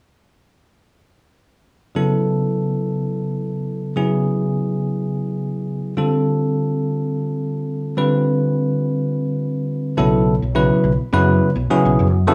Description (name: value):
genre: jazz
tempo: 209 BPM (eighths)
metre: 7/8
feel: straight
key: unclear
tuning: A4 = 439 Hz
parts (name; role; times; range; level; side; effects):
- bell-like tine electric piano; accompaniment; 1.9-12.3 s; C#3 to B4; -20 LUFS; equal; none
- woody fretless electric bass; bass; 10.0-12.3 s; B1 to F#2; -21 LUFS; equal; ensemble chorus
room: wet studio reverb, RT60 0.6 s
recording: studio reverb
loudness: -20 LUFS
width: mono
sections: 2.0-10.0 A section; 10.0-12.3 B section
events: none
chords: 2.0 Bsus2; 6.0 Dm7; 10.0 Bsus2